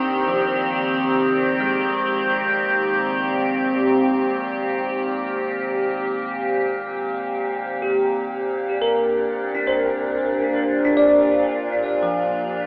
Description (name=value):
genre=ambient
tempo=free time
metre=none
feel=none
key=unclear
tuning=A4 = 440 Hz
part: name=evolving wavetable pad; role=sustained chords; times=0.0-12.7 s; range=Bb2 to G4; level=-20 LUFS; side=equal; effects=chorus, built-in reverb, phaser
part: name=bell-like tine electric piano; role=arpeggios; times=0.0-12.7 s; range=F3 to D5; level=-22 LUFS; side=equal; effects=lush chorus, diffuse ambient delay
room=wet plate reverb, RT60 2.5 s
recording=dreamy mix soaked in reverb, telephone sound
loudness=-18 LUFS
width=side -39 dB against mid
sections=0.0-12.7 A section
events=none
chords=0.0 Eb6/Bb; 1.1 Abmaj7/Bb; 8.1 Gm7/Bb